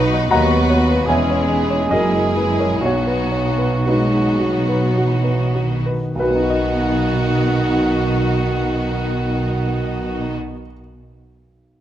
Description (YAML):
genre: classical, romantic movement for piano and orchestra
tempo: 48-81 BPM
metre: 3/4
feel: rubato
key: B major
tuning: A4 = 440 Hz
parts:
  - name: bright studio violin section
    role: melody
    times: 0.0-10.4 s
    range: F#4 to B4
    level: -29 LUFS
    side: left 2 dB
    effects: none
  - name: clear baby grand piano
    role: melody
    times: 0.0-11.8 s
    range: B1 to A#5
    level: -20 LUFS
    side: equal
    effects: none
  - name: mellow cor anglais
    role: second line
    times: 0.0-10.3 s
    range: F#4 to F#5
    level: -28 LUFS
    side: right 3 dB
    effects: none
  - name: rich studio violin section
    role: second line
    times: 0.0-10.3 s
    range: D#4 to F#4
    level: -28 LUFS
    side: left 2 dB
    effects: none
  - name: rich studio viola section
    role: accompaniment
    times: 0.0-10.3 s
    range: A#3 to D#4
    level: -28 LUFS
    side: right 2 dB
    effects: none
  - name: mellow French horn section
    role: sustained chords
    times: 0.0-10.4 s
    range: D#3 to E4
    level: -25 LUFS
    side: left 3 dB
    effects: none
  - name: rich studio cello section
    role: bass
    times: 0.0-10.3 s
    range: D#2 to B2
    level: -25 LUFS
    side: right 1 dB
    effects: none
  - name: rich studio double bass section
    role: bass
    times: 0.0-10.3 s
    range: E1 to D#2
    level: -23 LUFS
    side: right 2 dB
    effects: none
  - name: warm clarinet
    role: second line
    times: 0.3-10.4 s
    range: B3 to F#4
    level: -27 LUFS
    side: equal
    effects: none
  - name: clear bassoon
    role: accompaniment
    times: 0.3-10.3 s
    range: D#3 to G#3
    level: -28 LUFS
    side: right 3 dB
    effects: none
room: wet recital hall reverb, RT60 1.8 s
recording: none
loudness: -16 LUFS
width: side -11 dB against mid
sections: 0.0-6.2 A section; 6.2-9.6 B section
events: slowing down 0.0-6.2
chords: 0.3 B/D#; 1.1 C#m/E; 1.9 F#9; 2.8 B